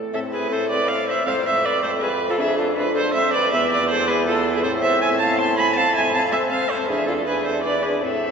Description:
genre	classical, renaissance-style consort dance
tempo	160 BPM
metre	3/4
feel	straight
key	A harmonic minor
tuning	A4 = 440 Hz
part	bright alto recorder	melody	0.1-8.3 s	F4 to A5	-25 LUFS	left 3 dB	none
part	warm viola	second line	0.1-8.3 s	G#4 to C6	-21 LUFS	right 3 dB	none
part	warm trombone	accompaniment	0.1-8.3 s	B3 to D4	-28 LUFS	left 2 dB	none
part	warm bassoon	bass	0.1-8.3 s	E2 to A2	-26 LUFS	right 1 dB	none
room	wet cathedral reverb, RT60 5.0 s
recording	recorded in a church or concert hall, nothing above 8.0 kHz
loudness	-18 LUFS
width	side -6 dB against mid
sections	0.1-8.3 A section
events	none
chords	0.1 Am; 1.3 F5; 2.4 Dm13/F; 3.5 E5; 4.6 Am; 5.8 F5; 6.9 E7

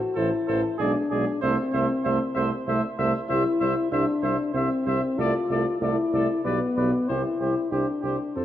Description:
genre	classical, brass quintet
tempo	95 BPM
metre	3/4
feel	straight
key	C major from 3.3 s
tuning	A4 = 443 Hz
part	dark French horn	accompaniment	0.0-8.4 s	B3 to F#4	-26 LUFS	left 3 dB	none
part	warm trumpet	second line	0.1-8.4 s	G4 to C5	-31 LUFS	right 6 dB	none
part	warm trumpet	melody	0.2-8.4 s	C5 to E5	-30 LUFS	left 3 dB	none
part	warm euphonium	accompaniment	0.2-8.4 s	E3 to A3	-32 LUFS	right 3 dB	none
part	warm tuba	bass	0.2-8.4 s	A1 to F2	-29 LUFS	right 3 dB	none
room	wet recital hall reverb, RT60 1.8 s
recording	worn, warbling old tape, cassette tape, warbly pitch drift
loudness	-22 LUFS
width	side -12 dB against mid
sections	0.0-8.4 A section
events	none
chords	0.0 Am; 0.8 G#dim/B; 1.4 Am/C; 3.3 C; 5.2 Dm7/C; 6.5 G/B; 7.1 C

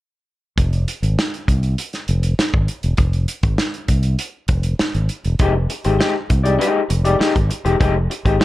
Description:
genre	funk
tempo	100 BPM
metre	4/4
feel	straight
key	F dorian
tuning	A4 = 440 Hz
part	fingered electric bass	bass	0.6-8.4 s	E1 to C2	-18 LUFS	equal	none
part	warm soul drum kit	drums	0.6-8.4 s	hi-hat, kick drum, snare drum	-20 LUFS	equal	none
part	electric guitar through a small old amp	accompaniment	5.4-8.4 s	Ab3 to D5	-18 LUFS	left 3 dB	none
room	small room ambience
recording	dark, warm production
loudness	-16 LUFS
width	side -16 dB against mid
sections	0.6-8.4 A section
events	none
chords	0.6 Fm9

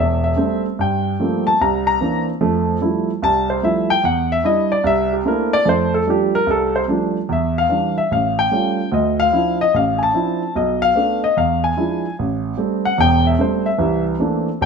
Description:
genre	solo jazz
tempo	148 BPM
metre	4/4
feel	swing 66% on 8ths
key	F major from 5.7 s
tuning	A4 = 439 Hz
part	dark baby grand piano	solo	0.0-14.7 s	E1 to Bb5	-16 LUFS	equal	none
room	moderate large studio reverb, RT60 1.2 s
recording	minimal, uncompressed stereo recording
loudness	-16 LUFS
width	side -5 dB against mid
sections	0.0-5.7 A section; 5.7-14.7 A section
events	grand piano solo 0.0-14.7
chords	0.0 Am7; 0.8 Gm11; 1.6 C9; 2.4 Fmaj9; 4.0 Em9; 4.8 C13; 5.7 F69; 7.3 Em7; 8.1 A7b13; 8.9 Dm9; 10.5 Bm7b5; 11.4 E7b9; 12.2 Am7; 13.8 C13

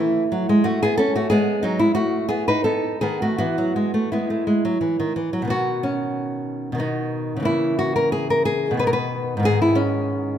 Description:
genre	classical, baroque-style dance for nylon-string guitar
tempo	81-94 BPM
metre	3/4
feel	rubato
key	E major, B major from 5.5 s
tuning	A4 = 441 Hz
part	nylon-string guitar	solo	0.0-10.4 s	G#2 to B4	-19 LUFS	equal	none
room	moderate concert hall reverb, RT60 2.1 s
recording	minimal, uncompressed stereo recording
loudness	-19 LUFS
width	side -9 dB against mid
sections	0.0-5.5 A section; 5.5-10.4 A section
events	none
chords	0.0 A5; 0.7 Amaj13; 1.3 F#13sus4; 2.0 F#m/A; 2.7 B7; 3.4 E; 5.5 B; 7.5 A#dim/C#; 8.8 B; 9.4 G#m

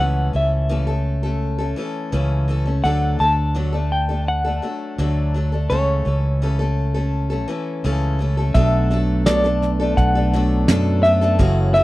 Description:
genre	acoustic folk duo or small band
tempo	84 BPM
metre	4/4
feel	straight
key	unclear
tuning	A4 = 440 Hz
part	semi-hollow electric guitar	melody	0.0-11.8 s	C#5 to A5	-21 LUFS	equal	tremolo
part	picked acoustic archtop guitar	accompaniment	0.0-11.8 s	F#2 to A4	-25 LUFS	left 3 dB	none
part	fingered electric bass	bass	0.0-11.8 s	F#1 to F#2	-19 LUFS	equal	none
part	soft brush drum kit	drums	8.5-11.8 s	kick drum, snare drum	-18 LUFS	right 1 dB	none
part	mellow tonewheel organ	sustained chords	8.6-11.8 s	F#3 to A4	-25 LUFS	right 2 dB	slow rotary speaker
room	little or no reverb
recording	dry, close 1970s-style studio recording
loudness	-17 LUFS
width	side -18 dB against mid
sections	0.0-8.6 A section; 8.6-11.8 B section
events	none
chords	0.0 A/C#; 2.8 D; 5.7 A/C#; 8.6 Bm7

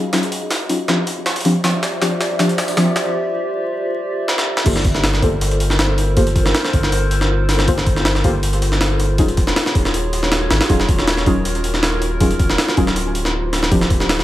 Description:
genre	drum and bass, jungle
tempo	159 BPM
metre	4/4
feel	straight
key	G minor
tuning	A4 = 441 Hz
part	warbly tape-like pad	sustained chords	0.0-14.2 s	E4 to F5	-23 LUFS	equal	chorus, built-in reverb, vintage 12-bit sampler grit
part	deep mellow chord stab	stabs	0.0-13.8 s	F3 to C5	-20 LUFS	left 1 dB	chorus, dub echo
part	jungle sampler-style drum kit	drums	0.1-14.2 s	crash cymbal, hi-hat, kick drum, snare drum	-17 LUFS	equal	overdrive, high-pass filter on hats, high-pass filter on kick, high-pass filter on snare, high-pass filter on cymbals, high-pass filter on room
part	soft dub sub bass	bass	4.7-14.2 s	D1 to Ab1	-20 LUFS	equal	none
room	light reverb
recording	vinyl crackle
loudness	-15 LUFS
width	side -14 dB against mid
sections	0.0-4.7 A section; 4.7-14.2 B section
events	build-up 0.0-4.7; drum fill 0.0-3.1, 4.3-4.7; filter sweep on ambient pad 0.0-4.7; filter sweep on synth stab 0.0-4.7; break 3.1-4.7; drop 4.7-14.2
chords	0.0 Ebm11; 0.9 Dm11; 4.7 Gm11; 9.2 Ebm11; 13.0 Dm11

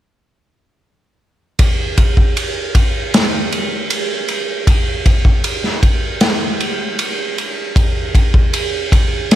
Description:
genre	rock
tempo	78 BPM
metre	4/4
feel	straight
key	none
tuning	none
part	raw garage drum kit	drums	1.6-9.4 s	kick drum, ride cymbal, snare drum	-13 LUFS	equal	none
room	light reverb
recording	none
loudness	-13 LUFS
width	side -13 dB against mid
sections	1.6-9.4 A section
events	none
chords	none

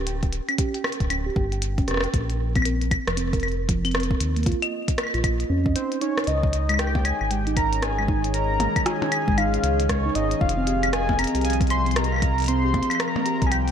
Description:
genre	IDM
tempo	116 BPM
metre	4/4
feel	swing 62% on 16ths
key	Db lydian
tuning	A4 = 437 Hz
part	harp-like synth pluck	arpeggios	0.0-13.7 s	F3 to G5	-28 LUFS	right 2 dB	chorus, slapback echo, ping-pong delay
part	round analog bass	bass	0.0-13.7 s	D1 to F2	-25 LUFS	equal	none
part	glitchy drum kit	drums	0.1-13.7 s	claves, hi-hat, percussion blips, rim click	-27 LUFS	left 1 dB	none
part	electronic kick drum	drums	0.2-13.5 s	none	-25 LUFS	equal	none
part	warm velvety synth lead	melody	5.8-13.7 s	C5 to C6	-26 LUFS	equal	chorus, tremolo, slapback echo, digital delay
part	glassy FM pad	sustained chords	7.4-13.7 s	Eb3 to Eb5	-29 LUFS	left 2 dB	ensemble chorus, built-in reverb
room	moderate scoring stage reverb, RT60 2.1 s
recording	big arena sound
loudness	-20 LUFS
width	side -8 dB against mid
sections	0.0-6.3 A section; 6.3-13.7 B section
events	filter sweep on synth pluck 0.0-6.3; break 5.8-6.3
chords	0.0 G5; 2.1 Bbsus2; 4.2 Eb5; 6.3 Dbsus2; 10.4 Fm7

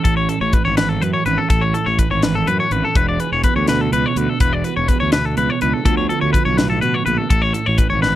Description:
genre	math rock and midwest emo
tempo	83 BPM (dotted quarters)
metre	6/8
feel	straight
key	A major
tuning	A4 = 441 Hz
part	mellow electric guitar	accompaniment	0.0-8.2 s	A2 to A4	-22 LUFS	right 8 dB	none
part	twangy electric guitar	arpeggios	0.0-8.1 s	A4 to D5	-20 LUFS	left 3 dB	none
part	crisp fusion drum kit	drums	0.0-8.1 s	hi-hat, kick drum, snare drum	-18 LUFS	left 1 dB	none
part	fuzz fingered electric bass	bass	0.1-8.2 s	E1 to B2	-21 LUFS	left 1 dB	overdrive
room	small room ambience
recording	dry, close 1970s-style studio recording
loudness	-15 LUFS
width	side -13 dB against mid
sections	0.0-8.2 A section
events	none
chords	0.0 Amaj7; 2.9 E7; 5.8 Dm6; 7.3 Amaj7

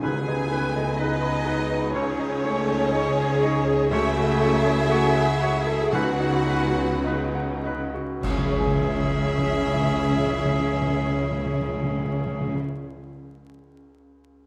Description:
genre	cinematic, emotional film score for orchestra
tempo	50-63 BPM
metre	4/4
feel	rubato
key	C# minor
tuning	A4 = 442 Hz
part	warm studio violin section	melody	0.0-12.6 s	C#5 to G#5	-34 LUFS	equal	none
part	dark clarinet	second line	0.0-12.6 s	C#4 to F#4	-36 LUFS	equal	none
part	mellow flute section	second line	0.0-12.6 s	G#4 to C#5	-34 LUFS	equal	none
part	rich studio violin section	second line	0.0-12.6 s	C#4 to G#4	-36 LUFS	equal	none
part	warm oboe	second line	0.0-12.6 s	G#4 to C#5	-35 LUFS	equal	none
part	bright baby grand piano	accompaniment	0.0-14.5 s	C#2 to B5	-33 LUFS	equal	none
part	rich studio viola section	accompaniment	0.0-12.6 s	A3 to B4	-32 LUFS	equal	none
part	dark French horn section	sustained chords	0.0-12.6 s	G#3 to F#4	-36 LUFS	equal	none
part	concert harp	arpeggios	0.0-12.9 s	C#3 to D#6	-34 LUFS	equal	none
part	rich studio cello section	bass	0.0-12.6 s	C#3	-34 LUFS	equal	none
part	rich studio double bass section	bass	0.0-12.6 s	C#2	-34 LUFS	equal	none
part	tam-tam, clash cymbals and concert bass drum	percussion	0.0-10.5 s	none	-38 LUFS	equal	none
part	timpani	percussion	0.0-12.6 s	C#3	-32 LUFS	equal	none
room	moderate scoring stage reverb, RT60 1.8 s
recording	vinyl crackle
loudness	-23 LUFS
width	mono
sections	0.0-8.2 A section; 8.2-12.8 B section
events	slowing down 0.0-8.2; band accent 0.0-1.0, 8.2-9.4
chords	0.0 G#m/C#; 1.9 C#sus2; 3.9 F#m/C#; 5.9 B/C#; 8.2 C#m

